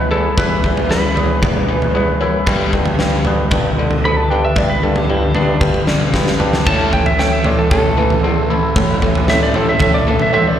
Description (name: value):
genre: quiet-loud alternative rock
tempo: 114 BPM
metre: 4/4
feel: straight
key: unclear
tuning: A4 = 442 Hz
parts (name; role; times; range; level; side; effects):
- lightly driven lead guitar; melody; 0.0-10.6 s; D4 to B5; -19 LUFS; right 1 dB; slapback echo
- twangy electric guitar; arpeggios; 0.0-10.6 s; G2 to E4; -22 LUFS; equal; phaser, slapback echo, digital delay
- overdriven electric guitar; riff; 0.0-10.6 s; G2 to A3; -22 LUFS; left 7 dB; spring reverb, slapback echo
- mellow bassoon; bass; 0.0-10.5 s; D2 to A3; -20 LUFS; right 1 dB; none
- huge arena drum kit; drums; 0.4-10.3 s; kick drum, snare drum, toms; -16 LUFS; equal; none
- thick fuzz guitar; riff; 6.7-10.6 s; A2 to A3; -21 LUFS; right 8 dB; distortion, slapback echo
room: light reverb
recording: live gig heard through the venue's PA, recital hall reverb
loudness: -13 LUFS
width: side -10 dB against mid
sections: 0.0-10.6 A section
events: lead electric guitar solo 0.0-10.6; drum fill 5.6-6.7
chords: 0.0 Em; 2.5 G; 6.7 Am